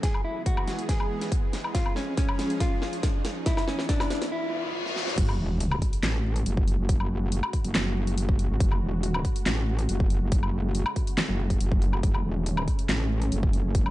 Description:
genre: heavy wobble dubstep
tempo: 140 BPM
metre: 4/4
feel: half-time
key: F# minor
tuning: A4 = 439 Hz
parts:
  - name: clean electric guitar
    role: melody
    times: 0.0-4.7 s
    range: C#4 to G#4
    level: -32 LUFS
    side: left 1 dB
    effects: digital delay
  - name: supersaw pad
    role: sustained chords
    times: 0.0-13.9 s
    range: C#3 to G#4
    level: -37 LUFS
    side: equal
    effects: sidechain pumping, low-pass filter
  - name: big-room dance drum kit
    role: drums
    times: 0.0-13.9 s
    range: crash cymbal, handclaps, hi-hat, snare drum, woodblock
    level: -31 LUFS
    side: equal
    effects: high-pass filter on perc, high-pass filter on snare, high-pass filter on hats, high-pass filter on cymbals
  - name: electronic kick drum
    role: drums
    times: 0.0-13.8 s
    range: none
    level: -25 LUFS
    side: equal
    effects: none
  - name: riser, reverse cymbal and sub drop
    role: sound effects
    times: 0.9-6.9 s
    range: none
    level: -35 LUFS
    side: equal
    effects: none
  - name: metallic wobble bass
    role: bass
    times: 5.2-13.9 s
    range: E1 to A1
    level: -26 LUFS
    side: equal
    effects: chorus, overdrive
room: light reverb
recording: dark, warm production, nothing above 10.7 kHz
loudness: -24 LUFS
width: side -16 dB against mid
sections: 0.0-5.2 A section; 5.2-13.9 B section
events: build-up 0.0-5.2; drum fill 0.0-4.3, 4.9-5.2; riser 0.9-5.2; break 4.3-5.2; reverse cymbal 4.3-5.2; drop 5.2-13.9; impact 5.2-6.9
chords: 0.0 E; 1.7 C#; 3.5 E; 5.2 F#madd9

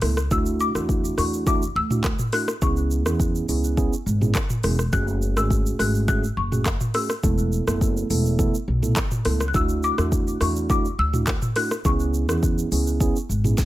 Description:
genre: afrobeats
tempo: 104 BPM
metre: 4/4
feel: straight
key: unclear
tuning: A4 = 439 Hz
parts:
  - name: mellow tine electric piano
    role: accompaniment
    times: 0.0-13.6 s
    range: A3 to A4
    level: -26 LUFS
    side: right 3 dB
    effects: none
  - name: upright bass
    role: bass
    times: 0.0-13.5 s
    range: E1 to E2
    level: -24 LUFS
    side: equal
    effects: none
  - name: afro-pop drum kit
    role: drums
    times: 0.0-13.7 s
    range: handclaps, hi-hat, kick drum, rim click, shaker, snare drum, toms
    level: -24 LUFS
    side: equal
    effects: none
  - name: folk marimba with medium mallets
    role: melody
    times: 0.3-13.7 s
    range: C#6 to F#6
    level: -27 LUFS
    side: left 4 dB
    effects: tape echo
room: digital ambience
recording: none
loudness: -20 LUFS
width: side -15 dB against mid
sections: 0.0-13.7 A section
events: none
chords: 0.3 Dadd9; 2.6 C#m7; 4.9 F#madd9; 7.2 Esus4; 9.5 Dadd9; 11.9 C#m7

